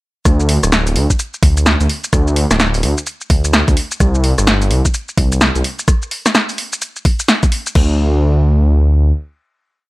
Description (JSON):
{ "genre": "UK garage, two-step garage", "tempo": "128 BPM", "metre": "4/4", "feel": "swing 62% on 16ths", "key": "unclear", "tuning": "A4 = 440 Hz", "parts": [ { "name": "dark detuned saw bass", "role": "bass", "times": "0.3-9.1 s", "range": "D1 to D2", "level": "-13 LUFS", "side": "equal", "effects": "none" }, { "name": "electronic kick drum", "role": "drums", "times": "0.3-7.9 s", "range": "none", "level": "-13 LUFS", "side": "equal", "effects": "overdrive" }, { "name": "punchy analog drum machine", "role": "drums", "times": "0.3-7.9 s", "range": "crash cymbal, hi-hat, rim click, shaker, snare drum", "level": "-16 LUFS", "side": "equal", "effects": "none" } ], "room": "digital ambience", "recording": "none", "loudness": "-12 LUFS", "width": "side -20 dB against mid", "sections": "0.3-7.8 drop; 7.8-9.9 final note", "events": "drop 0.3-7.8", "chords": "none", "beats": "| 0.25 0.72 1.19 1.66 | 2.13 2.60 3.07 3.54 | 4.00 4.47 4.94 5.41 | 5.88 6.35 6.82 7.29 | 7.75 8.22 8.69" }